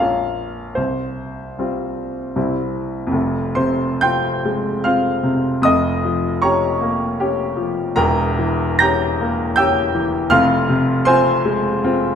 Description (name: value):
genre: classical, romantic nocturne for solo piano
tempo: 66-83 BPM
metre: 3/4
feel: rubato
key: F minor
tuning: A4 = 440 Hz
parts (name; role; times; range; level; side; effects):
- clear grand piano; solo; 0.0-12.2 s; E1 to Bb6; -16 LUFS; equal; none
room: wet recital hall reverb, RT60 1.7 s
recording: minimal, uncompressed stereo recording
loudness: -16 LUFS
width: side -8 dB against mid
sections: 0.0-3.2 A section; 3.2-12.2 B section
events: none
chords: 0.0 Bbm; 0.8 Csus4; 2.4 C; 3.2 Fm; 5.6 Gm7b5/F; 8.0 Edim7; 10.3 Fm